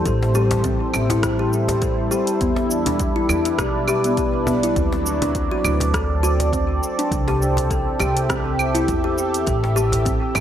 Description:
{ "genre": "organic downtempo", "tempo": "102 BPM", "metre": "4/4", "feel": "swing 56% on 16ths", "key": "D mixolydian", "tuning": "A4 = 440 Hz", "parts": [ { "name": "warm analog pad", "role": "sustained chords", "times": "0.0-10.4 s", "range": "F#3 to E5", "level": "-23 LUFS", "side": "right 1 dB", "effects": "chorus, sidechain pumping" }, { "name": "kalimba", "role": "arpeggios", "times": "0.1-10.4 s", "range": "B3 to A4", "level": "-23 LUFS", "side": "left 2 dB", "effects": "tape echo" }, { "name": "upright bass", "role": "bass", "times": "0.1-10.4 s", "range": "A1 to E2", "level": "-23 LUFS", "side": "equal", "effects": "sidechain pumping" }, { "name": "deep house drum kit", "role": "drums", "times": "0.1-10.4 s", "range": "cabasa, claves, hi-hat, rim click", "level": "-26 LUFS", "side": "right 1 dB", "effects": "none" }, { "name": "electronic kick drum", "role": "drums", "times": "0.1-10.2 s", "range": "none", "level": "-26 LUFS", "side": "equal", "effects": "none" }, { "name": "cajon", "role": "percussion", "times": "0.2-10.4 s", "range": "none", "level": "-31 LUFS", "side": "left 2 dB", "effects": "none" } ], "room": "moderate plate reverb, RT60 1.6 s, small room ambience", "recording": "dreamy mix soaked in reverb", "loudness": "-18 LUFS", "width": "side -10 dB against mid", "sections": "0.0-10.4 A section", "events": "none", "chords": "0.1 Am7; 2.4 Em7; 4.8 D7; 7.1 C6; 9.5 Am7" }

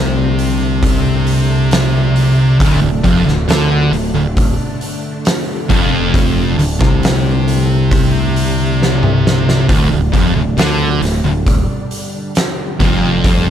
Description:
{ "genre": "stoner and doom metal", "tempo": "68 BPM", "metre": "4/4", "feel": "straight", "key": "D minor", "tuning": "A4 = 441 Hz", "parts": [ { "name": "string machine, violas", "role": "sustained chords", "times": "0.0-13.5 s", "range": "D3 to D4", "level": "-25 LUFS", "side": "equal", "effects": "ensemble chorus" }, { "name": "thick fuzz guitar", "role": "riff", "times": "0.0-13.5 s", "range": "D2 to D3", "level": "-17 LUFS", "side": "left 8 dB", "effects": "distortion" }, { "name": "thick fuzz guitar", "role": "riff", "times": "0.0-13.5 s", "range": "D2 to D3", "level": "-16 LUFS", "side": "right 7 dB", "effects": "distortion" }, { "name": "modern bright fingered electric bass", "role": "bass", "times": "0.0-13.5 s", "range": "D1 to D2", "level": "-19 LUFS", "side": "equal", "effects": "overdrive" }, { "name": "oversized low-tuned drum kit", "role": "drums", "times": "0.4-13.4 s", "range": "hi-hat, kick drum, snare drum, toms", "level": "-17 LUFS", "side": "equal", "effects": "none" } ], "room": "studio reverb", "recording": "dark, warm production", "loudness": "-11 LUFS", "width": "side -9 dB against mid", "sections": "0.0-13.5 A section", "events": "drum fill 8.8-9.7", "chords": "0.0 Dm" }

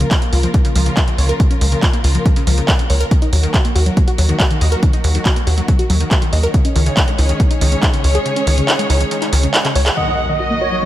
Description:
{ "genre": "uplifting trance", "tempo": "140 BPM", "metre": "4/4", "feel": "straight", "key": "Eb minor", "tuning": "A4 = 440 Hz", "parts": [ { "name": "dark studio string section", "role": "sustained chords", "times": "0.0-10.9 s", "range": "Db3 to Db5", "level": "-23 LUFS", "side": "equal", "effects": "sidechain pumping" }, { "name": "wide unison pluck", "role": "arpeggios", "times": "0.0-10.9 s", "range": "Db3 to Eb5", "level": "-22 LUFS", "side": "left 1 dB", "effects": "sidechain pumping, tape echo" }, { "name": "tight sequencer bass", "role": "bass", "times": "0.0-9.9 s", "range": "Db2 to Eb2", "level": "-14 LUFS", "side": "equal", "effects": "sidechain pumping" }, { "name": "punchy analog drum machine", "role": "drums", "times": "0.0-9.9 s", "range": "handclaps, hi-hat", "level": "-20 LUFS", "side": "right 1 dB", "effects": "none" }, { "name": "electronic kick drum", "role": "drums", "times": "0.1-7.9 s", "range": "none", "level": "-15 LUFS", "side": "equal", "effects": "none" }, { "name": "supersaw chords", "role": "melody", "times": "10.0-10.9 s", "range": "Db5 to Eb5", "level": "-19 LUFS", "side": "right 2 dB", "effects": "sidechain pumping, low-pass filter, tape echo" }, { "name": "dark studio violin section", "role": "second line", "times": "10.0-10.9 s", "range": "Eb5 to Gb5", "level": "-21 LUFS", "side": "equal", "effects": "vintage 12-bit sampler grit, tape echo" }, { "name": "impact", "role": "sound effects", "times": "10.0-10.9 s", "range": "none", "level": "-24 LUFS", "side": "equal", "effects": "none" } ], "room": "little or no reverb", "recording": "none", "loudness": "-12 LUFS", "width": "side -13 dB against mid", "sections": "0.0-10.0 A section", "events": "kick drops out 8.3-10.0; drum fill 9.6-10.0; band accent 9.9; impact 10.0-10.9", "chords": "0.0 Bbm/Db; 3.1 Ebm; 6.5 Dbsus2; 10.0 Ebm" }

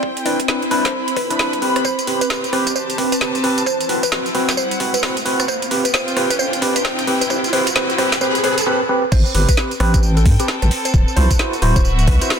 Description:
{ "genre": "UK garage, two-step garage", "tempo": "132 BPM", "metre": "4/4", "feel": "swing 62% on 16ths", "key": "A minor", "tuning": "A4 = 440 Hz", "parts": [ { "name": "mallet-like synth pluck", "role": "melody", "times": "0.0-12.3 s", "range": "G4 to D5", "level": "-25 LUFS", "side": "equal", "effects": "chorus, phaser, ping-pong delay" }, { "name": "soft string machine", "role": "sustained chords", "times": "0.0-12.4 s", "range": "C4 to B4", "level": "-28 LUFS", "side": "left 1 dB", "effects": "phaser, ensemble chorus, sidechain pumping" }, { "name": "deep soft wobble bass", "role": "bass", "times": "0.0-12.2 s", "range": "D1 to A2", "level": "-18 LUFS", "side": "equal", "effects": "chorus, high-pass filter" }, { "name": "electronic kick drum", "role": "drums", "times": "0.0-12.2 s", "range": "none", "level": "-17 LUFS", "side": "equal", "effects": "overdrive, high-pass filter on kick" }, { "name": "warm chamber string section", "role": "texture", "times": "0.0-12.4 s", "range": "C4 to B5", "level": "-26 LUFS", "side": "left 1 dB", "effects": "sidechain pumping" }, { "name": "garage drum kit", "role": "drums", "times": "0.2-12.4 s", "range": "crash cymbal, hi-hat, rim click, snare drum, tambourine", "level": "-21 LUFS", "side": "right 1 dB", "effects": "overdrive, high-pass filter on hats, high-pass filter on snare, high-pass filter on perc, high-pass filter on cymbals" }, { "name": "overdriven tine electric piano", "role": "stabs", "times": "0.3-12.4 s", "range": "C4 to C5", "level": "-21 LUFS", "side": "right 1 dB", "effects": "lush chorus, low-pass filter, ping-pong delay" }, { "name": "riser", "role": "sound effects", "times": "3.0-8.7 s", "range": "none", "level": "-25 LUFS", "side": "right 1 dB", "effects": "none" } ], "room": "light reverb", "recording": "dense, heavily limited modern master", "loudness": "-15 LUFS", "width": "side -7 dB against mid", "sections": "0.0-9.1 A section; 9.1-12.4 B section", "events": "build-up 0.0-9.1; filter sweep on string machine 0.0-9.1; riser 3.0-8.7; drop 9.1-12.4", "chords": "0.0 Cmaj7; 1.8 Am7; 3.7 D9; 5.5 G7sus4; 7.1 Cmaj7; 9.1 Am7; 10.9 D9" }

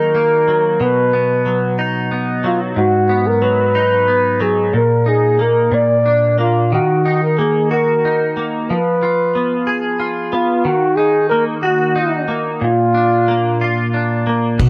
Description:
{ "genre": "six-eight pop ballad", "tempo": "61 BPM (dotted quarters)", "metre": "6/8", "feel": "straight", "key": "Eb minor", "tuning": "A4 = 440 Hz", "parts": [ { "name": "breathy flugelhorn", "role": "melody", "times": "0.0-14.7 s", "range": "F4 to D5", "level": "-18 LUFS", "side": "equal", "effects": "delay" }, { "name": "direct-recorded clean electric guitar", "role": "accompaniment", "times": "0.0-14.7 s", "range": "Ab2 to Ab4", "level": "-20 LUFS", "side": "equal", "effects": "double-tracked" }, { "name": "tonewheel organ", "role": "sustained chords", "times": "14.6-14.7 s", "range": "D#3 to F#4", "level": "-26 LUFS", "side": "equal", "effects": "chorus vibrato, fast rotary speaker" }, { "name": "upright bass", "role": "bass", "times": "14.6-14.7 s", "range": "B1", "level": "-14 LUFS", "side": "equal", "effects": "none" }, { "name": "damped 70s drum kit", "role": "drums", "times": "14.6-14.7 s", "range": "crash cymbal, kick drum", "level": "-18 LUFS", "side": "equal", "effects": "none" } ], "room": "light reverb", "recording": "none", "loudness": "-16 LUFS", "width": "mono", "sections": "0.0-14.6 A section", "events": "none", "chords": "0.0 Ebm; 0.8 B; 2.8 Abm7; 4.7 Eb5/Bb; 5.7 Bb; 6.7 Ebm; 8.7 Fdim; 10.6 Ebm; 12.6 Bb" }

